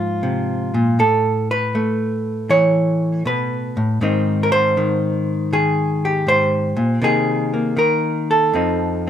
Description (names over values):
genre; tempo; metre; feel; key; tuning
solo jazz; 80 BPM; 4/4; swing 68% on 8ths, rubato; Ab major; A4 = 440 Hz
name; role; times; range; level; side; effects
hollow-body jazz guitar; solo; 0.0-9.1 s; F2 to C#5; -16 LUFS; equal; none
room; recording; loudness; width
light reverb; close, detailed microphones; -16 LUFS; side -9 dB against mid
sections
0.0-9.1 A section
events
none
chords
0.0 Db6; 1.0 Aadd9; 4.0 Abmaj7; 7.0 Abadd9/C; 8.5 F7